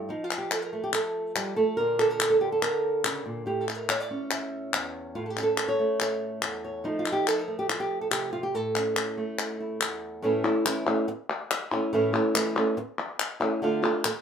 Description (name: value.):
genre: flamenco.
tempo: 142 BPM.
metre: 4/4.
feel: straight.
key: A phrygian dominant.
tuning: A4 = 440 Hz.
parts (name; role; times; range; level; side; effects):
flamenco guitar; melody; 0.0-14.1 s; E2 to E5; -26 LUFS; right 1 dB; none.
palmas hand claps; percussion; 0.3-14.2 s; none; -29 LUFS; left 4 dB; none.
room: moderate studio reverb, RT60 0.5 s.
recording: band playing live in one room.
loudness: -25 LUFS.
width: side -7 dB against mid.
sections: 0.0-10.2 A section; 10.2-14.2 B section.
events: none.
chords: 0.1 F; 1.8 Bb; 3.5 A; 6.8 F7; 8.5 A; 13.6 Dm.